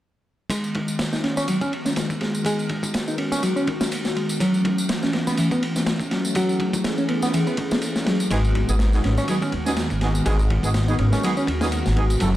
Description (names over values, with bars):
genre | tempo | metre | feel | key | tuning
breakbeat, breaks | 123 BPM | 4/4 | swing 56% on 16ths | G# phrygian | A4 = 441 Hz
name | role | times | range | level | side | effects
phased analog pad | sustained chords | 0.5-12.4 s | D#3 to G#4 | -27 LUFS | equal | phaser, chorus, sidechain pumping
bright reed electric piano | riff | 0.5-12.4 s | E3 to D#4 | -24 LUFS | equal | overdrive, phaser, low-pass filter, digital delay
crunchy breakbeat drum kit | drums | 0.5-12.3 s | kick drum, ride cymbal, snare drum | -27 LUFS | equal | high-pass filter on kick, high-pass filter on cymbals, high-pass filter on snare, high-pass filter on room
tambourine | drums | 0.5-12.3 s | none | -34 LUFS | equal | none
clear brass ensemble | stabs | 8.3-12.3 s | B3 to A4 | -29 LUFS | right 2 dB | digital delay
upright bass | bass | 8.3-12.4 s | F#1 to D#2 | -21 LUFS | equal | none
room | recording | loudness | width
moderate plate reverb, RT60 1.8 s, studio ambience | dark, warm production | -20 LUFS | side -14 dB against mid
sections
0.5-12.4 A section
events
filter sweep on analog synth pad 0.5-12.4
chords
0.5 G#m7; 4.4 F#m7; 8.3 G#m7